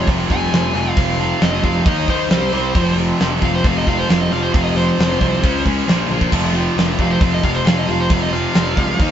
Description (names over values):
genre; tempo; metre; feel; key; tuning
hard rock; 134 BPM; 4/4; straight; unclear; A4 = 437 Hz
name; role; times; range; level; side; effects
dark smooth lead guitar; melody; 0.0-9.1 s; C5 to Ab5; -22 LUFS; equal; overdrive, analog delay
analog string pad; sustained chords; 0.0-9.1 s; F3 to Bb4; -30 LUFS; right 2 dB; none
high-gain distorted guitar; riff; 0.0-9.1 s; F2 to Eb4; -24 LUFS; right 7 dB; distortion
overdriven semi-hollow guitar; riff; 0.0-9.1 s; F2 to Eb4; -22 LUFS; left 5 dB; none
tight distorted guitar; riff; 0.0-9.1 s; F2 to Eb4; -26 LUFS; right 1 dB; none
fuzz picked electric bass; bass; 0.0-9.1 s; F1 to Eb2; -21 LUFS; equal; overdrive
gated 80s drum kit; drums; 0.1-9.1 s; crash cymbal, hi-hat, kick drum, snare drum, toms; -18 LUFS; equal; none
room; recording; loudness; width
moderate studio reverb, RT60 0.5 s; band playing live in one room, nothing above 7.8 kHz; -14 LUFS; side -9 dB against mid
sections
0.0-9.1 A section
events
lead electric guitar solo 0.0-9.1; drum fill 6.1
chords
0.0 Fm; 1.9 Eb5; 2.3 C5; 2.8 F5; 5.4 Db5; 5.9 Bb5; 6.3 F5